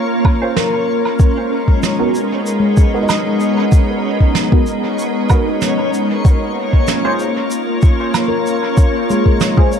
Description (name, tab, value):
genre	ambient dub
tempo	95 BPM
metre	4/4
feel	swing 53% on 16ths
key	G# dorian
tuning	A4 = 439 Hz
part	soft additive organ-like pad	sustained chords	0.0-9.8 s	G#3 to C#5	-18 LUFS	equal	ensemble chorus, built-in reverb
part	backwards swelling texture	texture	0.0-9.8 s	C#4 to C#5	-24 LUFS	left 1 dB	built-in reverb
part	electronic kick drum	drums	0.2-9.7 s	none	-11 LUFS	equal	none
part	woodblock, snare drum and shaker	drums	0.3-9.8 s	none	-22 LUFS	right 5 dB	dub echo
part	filtered dub chord stab	stabs	0.4-9.7 s	B3 to B#4	-23 LUFS	right 2 dB	phaser, lush chorus, dub echo
part	handpan	arpeggios	0.6-9.8 s	G#3 to D#5	-22 LUFS	left 5 dB	dub echo
room	light reverb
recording	dark, warm production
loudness	-12 LUFS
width	side -7 dB against mid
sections	0.0-9.8 A section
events	none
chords	0.0 A#m7; 1.2 G#m; 6.2 A#m7